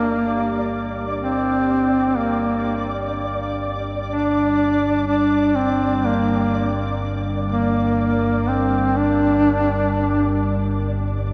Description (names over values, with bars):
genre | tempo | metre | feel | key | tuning
dark ambient drone | free time | none | none | G minor | A4 = 440 Hz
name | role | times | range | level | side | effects
warm duduk | melody | 0.0-10.4 s | Bb3 to D4 | -22 LUFS | equal | delay
deep dark ambient pad | sustained chords | 0.0-11.3 s | G3 to Bb4 | -30 LUFS | equal | chorus, built-in reverb
deep rumbling drone | drone | 0.0-11.3 s | G1 to G2 | -28 LUFS | equal | built-in reverb
flickering grainy texture | texture | 0.0-11.3 s | D5 | -31 LUFS | equal | built-in reverb
room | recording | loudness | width
wet huge ambient reverb, RT60 7.2 s | none | -20 LUFS | mono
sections
0.0-11.3 A section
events
fade-in on synth drone 0.0-11.3; fade-in on ambient pad 0.0-11.3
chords
0.0 Gm